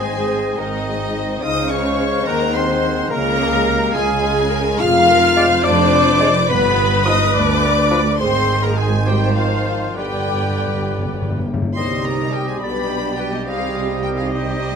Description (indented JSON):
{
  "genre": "quick classical-period movement for symphony orchestra",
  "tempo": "70 BPM (dotted quarters)",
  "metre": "6/8",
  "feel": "straight",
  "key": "C minor from 4.8 s",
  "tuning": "A4 = 440 Hz",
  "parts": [
    { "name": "rich chamber violin section", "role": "melody", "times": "0.0-14.8 s", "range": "Eb5 to F6", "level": "-25 LUFS", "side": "left 2 dB", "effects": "none" },
    { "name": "rich chamber violin section", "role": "second line", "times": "0.0-14.8 s", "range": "Eb4 to F5", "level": "-27 LUFS", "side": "equal", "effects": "none" },
    { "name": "silver concert flute", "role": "second line", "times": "0.0-14.8 s", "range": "G4 to F6", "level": "-26 LUFS", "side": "left 3 dB", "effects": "none" },
    { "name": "warm clarinet", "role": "second line", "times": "0.0-14.8 s", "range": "Eb4 to F5", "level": "-27 LUFS", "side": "left 2 dB", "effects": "none" },
    { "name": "warm oboe", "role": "second line", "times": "0.0-14.8 s", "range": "B4 to Gb5", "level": "-28 LUFS", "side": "right 2 dB", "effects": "none" },
    { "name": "mellow bassoon", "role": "accompaniment", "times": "0.0-14.8 s", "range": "D3 to C4", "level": "-28 LUFS", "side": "right 2 dB", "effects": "none" },
    { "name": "warm chamber viola section", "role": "accompaniment", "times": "0.0-14.8 s", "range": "C3 to D5", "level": "-25 LUFS", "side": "left 1 dB", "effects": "none" },
    { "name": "warm French horn section", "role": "sustained chords", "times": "0.0-14.8 s", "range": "Eb3 to F4", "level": "-23 LUFS", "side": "left 5 dB", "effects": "none" },
    { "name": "warm trumpet section", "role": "stabs", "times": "0.0-14.8 s", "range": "Eb4 to F5", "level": "-24 LUFS", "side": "equal", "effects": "none" },
    { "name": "warm chamber cello section", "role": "bass", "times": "0.0-14.8 s", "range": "D2 to Eb3", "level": "-24 LUFS", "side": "right 3 dB", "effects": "none" },
    { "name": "warm symphonic double bass section", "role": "bass", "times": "0.0-14.8 s", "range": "F1 to Eb2", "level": "-24 LUFS", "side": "right 4 dB", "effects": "none" },
    { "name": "timpani", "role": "percussion", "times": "10.0-11.7 s", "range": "G2", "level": "-25 LUFS", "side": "left 2 dB", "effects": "none" }
  ],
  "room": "moderate recital hall reverb, RT60 1.5 s",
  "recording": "none",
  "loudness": "-15 LUFS",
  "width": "side -6 dB against mid",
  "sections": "0.0-11.8 A section; 11.8-14.8 B section",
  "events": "timpani fill 10.0-11.8",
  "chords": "0.0 Ab; 1.4 Db; 2.3 Ab7/Eb; 3.1 Db; 4.8 Ddim/F; 6.5 G; 8.2 Ab; 10.0 G; 11.8 Cm; 12.6 G/B; 13.5 Cm",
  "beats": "0.58 | 1.43 2.27 | 3.10 3.94 | 4.80 5.65 | 6.49 7.34 | 8.19 9.07 | 9.96 10.86 | 11.76 12.62 | 13.47 14.32"
}